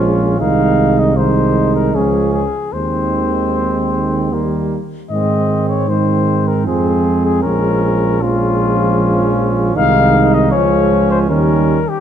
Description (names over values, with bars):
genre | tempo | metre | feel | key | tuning
classical, brass quintet | 77 BPM | 3/4 | straight | Ab major | A4 = 440 Hz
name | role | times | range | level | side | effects
mellow cornet | melody | 0.0-12.0 s | F4 to F5 | -18 LUFS | left 7 dB | none
mellow flugelhorn | second line | 0.0-11.8 s | Bb3 to Eb4 | -20 LUFS | right 6 dB | none
mellow French horn | accompaniment | 0.0-11.8 s | G3 to Ab3 | -20 LUFS | left 1 dB | none
warm trombone | accompaniment | 0.0-11.8 s | Eb3 to F3 | -20 LUFS | right 2 dB | none
mellow tuba | bass | 0.0-11.8 s | Bb1 to Ab2 | -18 LUFS | right 2 dB | none
room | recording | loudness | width
moderate recital hall reverb, RT60 1.7 s | dark, warm production | -12 LUFS | side -9 dB against mid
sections
0.0-12.0 A section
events
none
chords
0.4 Ab/C; 1.9 Db; 2.7 Ab/Eb; 4.3 Eb; 5.1 Ab; 6.7 Fm; 7.5 Bbm7; 9.8 Ab/C; 10.5 Db; 11.3 Eb7